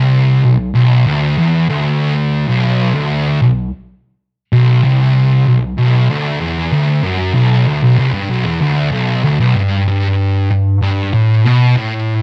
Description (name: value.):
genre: metal.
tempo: 95 BPM.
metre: 4/4.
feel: straight.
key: B minor.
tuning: A4 = 439 Hz.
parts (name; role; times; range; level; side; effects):
thick fuzz guitar; solo; 0.0-12.2 s; B1 to B2; -13 LUFS; equal; distortion.
room: moderate studio reverb, RT60 0.9 s.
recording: dark, warm production.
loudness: -14 LUFS.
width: mono.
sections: 0.0-12.2 A section.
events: none.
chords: none.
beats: 0.11 0.74 1.37 | 2.00 2.63 3.26 3.89 | 4.52 5.15 5.78 6.41 | 7.04 7.67 8.30 8.93 | 9.56 10.19 10.82 11.45 | 12.08.